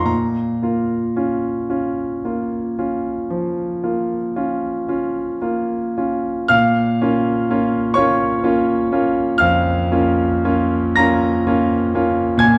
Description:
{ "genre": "classical, romantic nocturne for solo piano", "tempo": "35-44 BPM (dotted quarters)", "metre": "12/8", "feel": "rubato", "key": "Bb minor", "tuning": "A4 = 440 Hz", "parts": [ { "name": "bright concert grand piano", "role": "solo", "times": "0.0-12.6 s", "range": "F2 to Bb6", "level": "-19 LUFS", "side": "equal", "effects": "none" } ], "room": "wet recital hall reverb, RT60 1.7 s", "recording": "dark, warm production", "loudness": "-19 LUFS", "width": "mono", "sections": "0.0-6.5 A section; 6.5-12.6 A section", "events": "none", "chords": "0.1 Bbm", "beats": "| 0.09 1.70 3.30 4.89 | 6.51 7.97 9.39 10.98 | 12.42" }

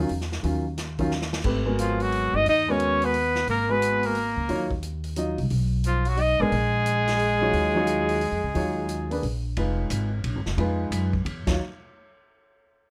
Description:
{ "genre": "jazz, small-group swing and bop", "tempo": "178 BPM", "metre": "3/4", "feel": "swing 64% on 8ths", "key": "Eb minor", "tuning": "A4 = 440 Hz", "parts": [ { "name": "clear grand piano", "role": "accompaniment", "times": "0.0-11.6 s", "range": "Eb3 to Eb5", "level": "-30 LUFS", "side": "equal", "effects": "none" }, { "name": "upright bass", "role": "bass", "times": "0.0-11.6 s", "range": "F1 to Gb2", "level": "-30 LUFS", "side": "equal", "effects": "none" }, { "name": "vintage drum kit", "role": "drums", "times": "0.1-11.5 s", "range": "crash cymbal, hi-hat, kick drum, ride cymbal, snare drum", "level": "-38 LUFS", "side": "equal", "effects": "none" }, { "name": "warm trumpet", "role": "melody", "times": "1.8-9.2 s", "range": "F4 to Eb5", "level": "-28 LUFS", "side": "equal", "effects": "none" }, { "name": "bright alto saxophone", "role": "second line", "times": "1.8-9.2 s", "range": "F3 to Eb4", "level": "-30 LUFS", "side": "equal", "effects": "none" } ], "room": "light reverb", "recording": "none", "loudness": "-25 LUFS", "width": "mono", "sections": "0.0-9.6 A section; 9.6-11.6 B section; 11.6-12.6 C section", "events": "drum fill 1.1-1.4", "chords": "0.0 Ebm9; 1.4 Abm9; 4.5 Ebm9; 5.5 Abm13; 6.5 Bb5; 7.5 Ebm9; 9.2 N.C.; 9.6 Fm7b5; 10.2 Bb5; 10.6 Fm7b5; 11.3 N.C.; 11.4 Ebm9; 11.6 N.C.", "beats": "0.10 | 0.43 0.77 1.11 | 1.45 1.79 2.12 | 2.46 2.80 3.14 | 3.48 3.82 4.15 | 4.49 4.83 5.17 | 5.51 5.84 6.18 | 6.52 6.86 7.20 | 7.53 7.87 8.21 | 8.55 8.89 9.22 | 9.56 9.90 10.24 | 10.58 10.92 11.26" }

